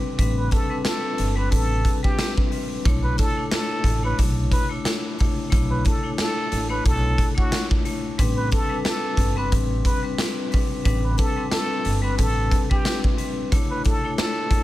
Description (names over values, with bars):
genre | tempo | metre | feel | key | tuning
hip hop, boom-bap hip-hop | 90 BPM | 4/4 | swing 55% on 16ths | B phrygian | A4 = 440 Hz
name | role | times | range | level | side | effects
vibraphone with medium hard mallets | accompaniment | 0.0-14.6 s | G3 to C#5 | -28 LUFS | left 4 dB | cassette tape, high-pass filter, low-pass filter
upright bass | bass | 0.2-12.5 s | G1 to B1 | -24 LUFS | equal | none
raw garage drum kit | drums | 0.2-14.6 s | handclaps, hi-hat, kick drum, snare drum | -22 LUFS | equal | none
trumpet with plunger mute | melody | 0.4-14.6 s | F#4 to B4 | -28 LUFS | right 1 dB | high-pass filter, low-pass filter
finger snaps | percussion | 0.9-2.4, 14.2-14.4 s | none | -39 LUFS | right 6 dB | none
room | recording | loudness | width
light reverb | none | -20 LUFS | side -16 dB against mid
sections
0.0-2.9 A section; 2.9-14.6 B section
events
none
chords
0.0 Am11; 2.9 Bm11; 8.2 Am11; 13.5 Aadd11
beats
| 0.19 0.86 1.52 2.19 | 2.86 3.52 4.19 4.86 | 5.52 6.19 6.86 7.52 | 8.19 8.86 9.52 10.19 | 10.86 11.52 12.19 12.86 | 13.52 14.19